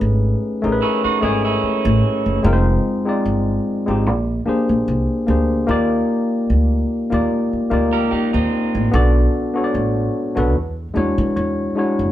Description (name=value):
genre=R&B, neo-soul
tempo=74 BPM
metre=4/4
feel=swing 54% on 16ths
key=unclear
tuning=A4 = 435 Hz
part: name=mellow tine electric piano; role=accompaniment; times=0.0-12.1 s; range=Ab3 to D#5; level=-18 LUFS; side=left 1 dB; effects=overdrive
part: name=upright bass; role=bass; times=0.0-12.1 s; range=F1 to E3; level=-19 LUFS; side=equal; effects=none
part: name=electric guitar through a small old amp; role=second line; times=0.8-2.4, 7.9-8.9 s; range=C4 to Bb4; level=-22 LUFS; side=right 7 dB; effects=none
room=moderate large studio reverb, RT60 0.9 s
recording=band playing live in one room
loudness=-16 LUFS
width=side -13 dB against mid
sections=0.0-12.1 A section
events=tine electric piano fill 10.9-12.1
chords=0.0 Amaj9#11; 2.4 Fm7; 4.1 Bb13; 5.7 Ebmaj9; 8.9 Bm7; 10.5 E13